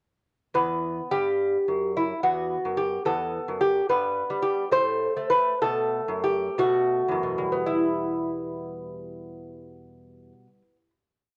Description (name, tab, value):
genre	classical, baroque-style dance for lute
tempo	54-73 BPM (dotted quarters)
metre	6/8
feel	rubato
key	E minor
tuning	A4 = 443 Hz
part	lute	solo	0.5-10.9 s	E2 to C5	-26 LUFS	equal	cassette tape
room	moderate small room reverb, RT60 0.6 s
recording	home recording on cassette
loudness	-25 LUFS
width	mono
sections	0.5-7.7 A section; 7.7-11.4 final chord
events	slowing down 3.1-7.7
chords	0.5 Em; 2.2 B5/E; 3.9 G; 4.7 N.C.; 5.6 B5; 7.7 Em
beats	| 0.54 1.39 | 2.23 3.06 | 3.88 4.72 | 5.62 6.59 | 7.67 8.75 | 9.83